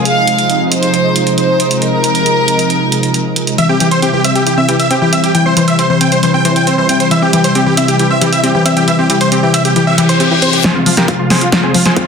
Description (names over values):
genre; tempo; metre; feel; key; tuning
uplifting trance; 136 BPM; 4/4; straight; unclear; A4 = 444 Hz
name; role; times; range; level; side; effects
analog string pad; sustained chords; 0.0-12.1 s; C3 to F4; -15 LUFS; equal; ensemble chorus, sidechain pumping
rich studio violin section; second line; 0.1-3.5 s; Bb4 to F5; -14 LUFS; equal; tape echo
punchy analog drum machine; drums; 0.1-12.1 s; hi-hat, snare drum; -17 LUFS; right 1 dB; none
big supersaw lead; melody; 3.6-12.0 s; F4 to G5; -14 LUFS; right 1 dB; vintage 12-bit sampler grit, sidechain pumping, low-pass filter, tape echo
analog pluck; arpeggios; 3.6-12.0 s; E3 to C4; -15 LUFS; left 2 dB; chorus, sidechain pumping, tape echo
reverse cymbal and riser; sound effects; 9.9-12.1 s; none; -19 LUFS; left 5 dB; none
electronic kick drum; drums; 10.6-12.1 s; none; -18 LUFS; equal; high-pass filter on kick
room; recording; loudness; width
moderate digital room reverb, RT60 1.1 s; dense, heavily limited modern master; -9 LUFS; side -6 dB against mid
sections
0.0-10.6 A section; 10.6-12.1 B section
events
reverse cymbal 9.9-10.6; build-up 10.6-12.1; drum fill 10.6-12.1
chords
0.0 Fm; 3.6 C; 10.6 Fm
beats
| 0.05 0.49 0.94 1.38 | 1.82 2.26 2.70 3.14 | 3.58 4.02 4.46 4.91 | 5.35 5.79 6.23 6.67 | 7.11 7.55 8.00 8.44 | 8.88 9.32 9.76 10.20 | 10.64 11.08 11.52 11.96